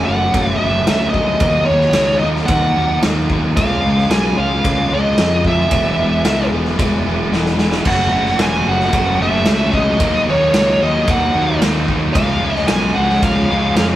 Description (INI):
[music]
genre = quiet-loud alternative rock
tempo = 112 BPM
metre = 4/4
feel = straight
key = unclear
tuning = A4 = 440 Hz
[part]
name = biting lead guitar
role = melody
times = 0.0-13.8 s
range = C#5 to G#5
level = -18 LUFS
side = right 1 dB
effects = overdrive
[part]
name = muted chamber string section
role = sustained chords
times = 0.0-14.0 s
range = E4 to A#5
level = -34 LUFS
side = equal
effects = none
[part]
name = crunchy overdriven guitar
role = riff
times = 0.0-14.0 s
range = F#2 to F#4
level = -23 LUFS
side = left 3 dB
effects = none
[part]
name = thick fuzz guitar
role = riff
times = 0.0-14.0 s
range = F#2 to E#4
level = -22 LUFS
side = right 2 dB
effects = distortion
[part]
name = fuzz fingered electric bass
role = bass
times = 0.0-14.0 s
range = E1 to E#2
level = -20 LUFS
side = equal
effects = overdrive
[part]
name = raw garage drum kit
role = drums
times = 0.3-13.9 s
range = crash cymbal, kick drum, ride cymbal, snare drum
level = -19 LUFS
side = equal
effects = none
[part]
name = heavy high-gain guitar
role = riff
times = 7.9-14.0 s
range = F#2 to F#4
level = -25 LUFS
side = equal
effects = distortion
[sound]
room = moderate stone room reverb, RT60 1.1 s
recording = rough rehearsal-room recording, tube saturation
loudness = -13 LUFS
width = side -13 dB against mid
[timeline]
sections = 0.0-14.0 A section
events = drum fill 7.3-7.9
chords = 0.0 F#m; 1.4 D#m; 3.6 C#; 5.7 E; 7.9 F#m; 10.0 D#m; 12.2 C#